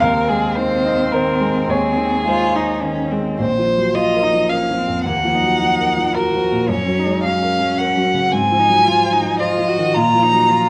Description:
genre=neoclassical piano and strings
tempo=109 BPM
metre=3/4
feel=rubato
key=unclear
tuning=A4 = 441 Hz
part: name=dark violin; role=melody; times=0.0-10.7 s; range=Ab4 to Bb5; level=-20 LUFS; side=equal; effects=none
part: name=warm cello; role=second line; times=0.0-10.7 s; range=Bb3 to Gb4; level=-25 LUFS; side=equal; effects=none
part: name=warm baby grand piano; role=accompaniment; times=0.0-10.7 s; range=Bb1 to F5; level=-22 LUFS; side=equal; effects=none
room=wet echo chamber reverb, RT60 1.4 s, studio reverb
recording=none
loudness=-17 LUFS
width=mono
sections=0.0-3.4 A section; 3.4-10.7 B section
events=none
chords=0.0 Ab/Eb; 3.4 Bbsus2; 5.1 Ebmadd9; 6.7 Gb; 8.3 Fm7/Ab; 10.0 Bb5

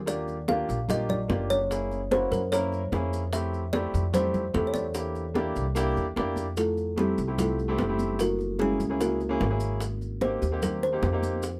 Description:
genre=Afro-Cuban jazz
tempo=148 BPM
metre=4/4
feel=straight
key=unclear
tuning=A4 = 438 Hz
part: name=upright bass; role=bass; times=0.0-11.6 s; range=F#1 to F#2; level=-34 LUFS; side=equal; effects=none
part: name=kalimba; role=melody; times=0.1-11.0 s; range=G3 to F5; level=-31 LUFS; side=equal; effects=none
part: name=clear upright piano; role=accompaniment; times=0.1-11.4 s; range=A3 to A#4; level=-34 LUFS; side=equal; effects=none
part: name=bongos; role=percussion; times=0.1-11.6 s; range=none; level=-37 LUFS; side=equal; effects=none
part: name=congas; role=percussion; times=0.1-11.6 s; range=none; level=-36 LUFS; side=equal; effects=none
part: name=maracas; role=percussion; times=0.1-11.6 s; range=none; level=-48 LUFS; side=equal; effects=none
room=light reverb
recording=none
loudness=-27 LUFS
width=mono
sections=0.0-6.6 A section; 6.6-11.6 B section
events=kalimba solo 6.6-11.6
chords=0.1 Ebmaj7; 1.7 F#9; 3.3 Fmaj7; 5.0 Em7b5; 5.8 C9; 6.6 Fmaj9; 8.2 Gb9; 9.8 Abmaj7

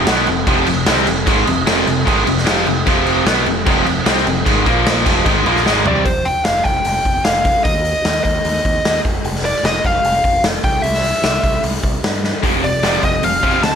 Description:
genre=hard rock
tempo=150 BPM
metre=4/4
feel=straight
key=unclear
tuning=A4 = 440 Hz
part: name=distorted electric guitar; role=riff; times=0.0-6.0 s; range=F2 to C4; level=-22 LUFS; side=right 1 dB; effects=distortion
part: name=overdriven semi-hollow guitar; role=riff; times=0.0-6.1, 12.4-13.8 s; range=F2 to C4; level=-20 LUFS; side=right 12 dB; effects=spring reverb
part: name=tight distorted guitar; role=riff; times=0.0-6.1, 12.4-13.8 s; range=F2 to C4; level=-20 LUFS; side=left 12 dB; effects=distortion
part: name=growling picked electric bass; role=bass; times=0.0-13.8 s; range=F1 to G2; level=-23 LUFS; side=equal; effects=overdrive
part: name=raw garage drum kit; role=drums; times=0.1-13.7 s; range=crash cymbal, hi-hat, kick drum, snare drum, toms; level=-17 LUFS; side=equal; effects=none
part: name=smooth overdriven lead guitar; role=melody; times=5.9-13.8 s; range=C5 to A5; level=-17 LUFS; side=equal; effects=none
room=moderate large studio reverb, RT60 1.2 s, small room reverb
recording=none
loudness=-13 LUFS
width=side -7 dB against mid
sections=0.0-6.1 A section; 6.1-13.8 B section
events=drum fill 5.7-6.1, 12.2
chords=0.0 F5; 4.7 Bb5; 5.1 F5; 6.1 Fsus2; 7.6 N.C.; 10.6 C; 12.4 F5

